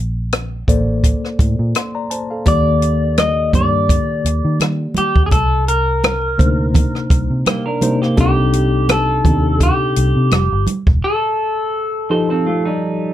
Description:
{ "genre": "lush 1970s-style soul", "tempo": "84 BPM", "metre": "4/4", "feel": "swing 54% on 16ths", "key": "unclear", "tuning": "A4 = 436 Hz", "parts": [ { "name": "vintage muted fingered electric bass", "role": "bass", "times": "0.0-11.0 s", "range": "E1 to Eb3", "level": "-18 LUFS", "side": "equal", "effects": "none" }, { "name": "compact cocktail drum kit", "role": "drums", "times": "0.3-11.0 s", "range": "hi-hat, kick drum, rim click", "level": "-16 LUFS", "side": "equal", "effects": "none" }, { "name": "mellow tine electric piano", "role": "accompaniment", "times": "0.7-13.1 s", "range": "C3 to C6", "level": "-19 LUFS", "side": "left 2 dB", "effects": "medium stereo tremolo" }, { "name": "electric guitar through a small old amp", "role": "melody", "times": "2.5-13.1 s", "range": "G4 to Eb5", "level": "-19 LUFS", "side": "left 1 dB", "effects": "none" }, { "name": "congas", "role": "percussion", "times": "2.5-10.8 s", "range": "none", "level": "-23 LUFS", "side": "right 4 dB", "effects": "none" }, { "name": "electric guitar through a small old amp", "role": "riff", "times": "7.5-13.1 s", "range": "G3 to C5", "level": "-21 LUFS", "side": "right 4 dB", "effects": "none" } ], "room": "light reverb", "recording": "dark, warm production", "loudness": "-14 LUFS", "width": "side -12 dB against mid", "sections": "0.0-13.1 A section", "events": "break 11.0-13.1", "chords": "0.0 Bbmaj9; 2.5 Ebmaj7; 5.3 Cm7; 8.2 Cm69; 10.3 F9" }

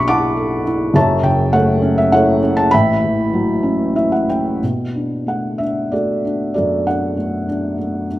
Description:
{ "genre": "classical, lyrical solo piano", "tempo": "90-104 BPM", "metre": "3/4", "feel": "rubato", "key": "B minor", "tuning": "A4 = 438 Hz", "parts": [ { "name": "felt-muted upright piano", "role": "solo", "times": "0.0-8.2 s", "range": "F#1 to D6", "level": "-14 LUFS", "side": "equal", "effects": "none" } ], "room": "moderate recital hall reverb, RT60 1.4 s", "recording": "minimal, uncompressed stereo recording", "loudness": "-14 LUFS", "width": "side -15 dB against mid", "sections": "0.0-4.6 A section; 4.6-8.2 B section", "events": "felt piano fill 3.6-4.6", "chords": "0.0 Bm7; 1.0 F#m7; 2.7 A13; 4.6 Bm7" }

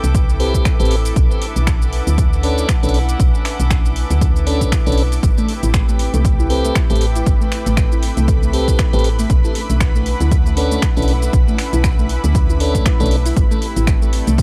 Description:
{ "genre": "deep house", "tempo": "118 BPM", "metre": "4/4", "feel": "swing 57% on 16ths", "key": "unclear", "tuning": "A4 = 441 Hz", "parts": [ { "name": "warbly tape-like pad", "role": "sustained chords", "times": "0.0-14.4 s", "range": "A3 to B4", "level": "-32 LUFS", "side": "equal", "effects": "chorus, built-in reverb, vintage 12-bit sampler grit, sidechain pumping" }, { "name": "woody FM bass", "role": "bass", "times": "0.0-14.4 s", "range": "A1 to D2", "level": "-20 LUFS", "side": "equal", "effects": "transformer saturation, sidechain pumping" }, { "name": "deep house drum kit", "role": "drums", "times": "0.0-14.4 s", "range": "finger snaps, hi-hat, shaker", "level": "-29 LUFS", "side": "equal", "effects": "overdrive" }, { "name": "rich chamber string section", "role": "texture", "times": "0.0-14.4 s", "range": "E4 to D6", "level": "-31 LUFS", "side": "equal", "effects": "sidechain pumping" }, { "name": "electronic kick drum", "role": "drums", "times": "0.1-14.4 s", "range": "none", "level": "-19 LUFS", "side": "equal", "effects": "none" }, { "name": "tonewheel organ", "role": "stabs", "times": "0.4-13.2 s", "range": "C4 to B4", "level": "-25 LUFS", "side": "equal", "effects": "stopped rotary speaker, sidechain pumping, tape echo" }, { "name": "analog string pad", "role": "texture", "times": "5.2-14.4 s", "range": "B4 to B5", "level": "-33 LUFS", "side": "equal", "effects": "ensemble chorus" }, { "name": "soft round pluck", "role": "arpeggios", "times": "5.4-14.4 s", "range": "A3 to E4", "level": "-28 LUFS", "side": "equal", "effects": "ensemble chorus, sidechain pumping, analog delay" } ], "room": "little or no reverb", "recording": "dry, gritty hardware recording, vinyl crackle", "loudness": "-16 LUFS", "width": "mono", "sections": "0.0-14.4 A section", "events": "none", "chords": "0.0 Am9; 1.2 Bm9; 5.2 Am9; 9.3 Bm9; 13.4 Am9" }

